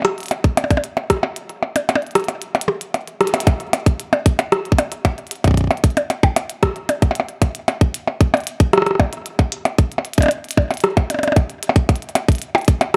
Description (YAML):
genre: IDM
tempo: 114 BPM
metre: 4/4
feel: straight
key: none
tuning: none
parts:
  - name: glitchy drum kit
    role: drums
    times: 0.0-13.0 s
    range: hi-hat, percussion blips, rim click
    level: -21 LUFS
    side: equal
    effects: studio ambience, digital delay
  - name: electronic kick drum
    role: drums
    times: 0.4-12.8 s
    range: none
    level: -16 LUFS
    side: equal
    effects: studio ambience
room: light reverb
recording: none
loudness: -19 LUFS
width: mono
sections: 0.0-3.5 A section; 3.5-13.0 B section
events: kick drops out 1.4-3.5; drum fill 3.2; band accent 3.2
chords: none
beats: 0.31 0.84 | 1.36 1.89 2.42 2.94 | 3.47 4.00 4.52 5.05 | 5.57 6.10 6.63 7.15 | 7.68 8.21 8.73 9.26 | 9.79 10.31 10.84 11.36 | 11.89 12.42 12.94